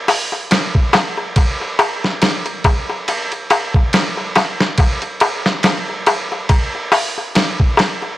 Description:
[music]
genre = trip hop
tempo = 70 BPM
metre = 4/4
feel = swing 57% on 16ths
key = none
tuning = none
[part]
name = boom bap sampler-style drum kit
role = drums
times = 0.1-8.0 s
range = hi-hat, kick drum, ride cymbal, snare drum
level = -16 LUFS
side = equal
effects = none
[part]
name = darbuka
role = percussion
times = 0.1-8.2 s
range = none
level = -18 LUFS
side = left 2 dB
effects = none
[sound]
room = light reverb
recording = dry, gritty hardware recording, transformer saturation, vinyl crackle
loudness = -14 LUFS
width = side -15 dB against mid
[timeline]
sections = 0.0-8.2 A section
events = none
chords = none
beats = 0.50 | 1.36 2.22 3.07 3.93 | 4.79 5.64 6.50 7.36

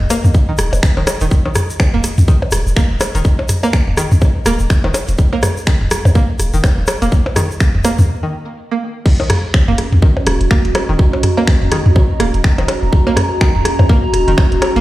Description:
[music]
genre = minimal techno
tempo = 124 BPM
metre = 4/4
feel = swing 58% on 16ths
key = Eb minor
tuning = A4 = 440 Hz
[part]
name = punchy sub bass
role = bass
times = 0.0-14.8 s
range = Eb1 to Eb2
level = -15 LUFS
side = equal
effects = sidechain pumping
[part]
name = minimal click drum kit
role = percussion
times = 0.0-14.7 s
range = percussion blips, rim click, toms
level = -18 LUFS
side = equal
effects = overdrive
[part]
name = warbly tape-like pad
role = texture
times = 0.0-14.8 s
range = Db4 to Bb5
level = -23 LUFS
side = right 1 dB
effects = chorus, built-in reverb, phaser, sidechain pumping
[part]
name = string-like resonator pluck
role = riff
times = 0.1-14.8 s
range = Eb3 to Bb3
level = -21 LUFS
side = right 2 dB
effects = chorus, sidechain pumping, tape echo
[part]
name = garage drum kit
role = drums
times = 0.1-14.7 s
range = crash cymbal, finger snaps, hi-hat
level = -24 LUFS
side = equal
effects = none
[part]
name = egg shaker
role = percussion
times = 0.1-8.1 s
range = none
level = -28 LUFS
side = left 2 dB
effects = none
[part]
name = electronic kick drum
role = drums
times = 0.3-14.5 s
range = none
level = -12 LUFS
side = equal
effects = none
[sound]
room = light reverb, digital ambience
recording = played on a big sound system in a bare room, stone room reverb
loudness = -11 LUFS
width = side -16 dB against mid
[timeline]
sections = 0.0-9.1 A section; 9.1-14.8 B section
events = break 8.1-9.1; drop 9.1-14.8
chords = none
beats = 0.35 0.83 | 1.31 1.80 2.28 2.77 | 3.25 3.73 4.22 4.70 | 5.18 5.67 6.15 6.64 | 7.12 7.60 8.09 8.57 | 9.06 9.54 10.02 10.51 | 10.99 11.47 11.96 12.44 | 12.93 13.41 13.89 14.38

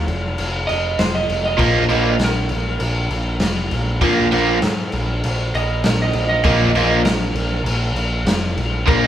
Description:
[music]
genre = garage rock duo or trio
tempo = 99 BPM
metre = 4/4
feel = straight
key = unclear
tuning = A4 = 440 Hz
[part]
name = electric slide guitar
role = melody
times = 0.0-9.1 s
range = Bb4 to Eb5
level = -23 LUFS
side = right 4 dB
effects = none
[part]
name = growling picked electric bass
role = bass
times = 0.0-9.1 s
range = F1 to Ab2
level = -22 LUFS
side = equal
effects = overdrive
[part]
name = raw garage drum kit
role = drums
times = 0.1-9.0 s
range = crash cymbal, kick drum, snare drum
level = -21 LUFS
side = left 1 dB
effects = none
[part]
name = overdriven electric guitar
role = riff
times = 1.6-9.1 s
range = Bb2 to Bb3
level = -16 LUFS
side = equal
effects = none
[sound]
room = moderate studio reverb, RT60 0.6 s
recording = band playing live in one room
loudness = -16 LUFS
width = side -11 dB against mid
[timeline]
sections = 0.0-9.1 A section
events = electric slide guitar solo 0.0-9.1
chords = 0.0 N.C.; 1.6 Bb5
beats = 0.38 0.99 | 1.60 2.21 2.81 3.42 | 4.03 4.64 5.25 5.85 | 6.46 7.07 7.68 8.29 | 8.90

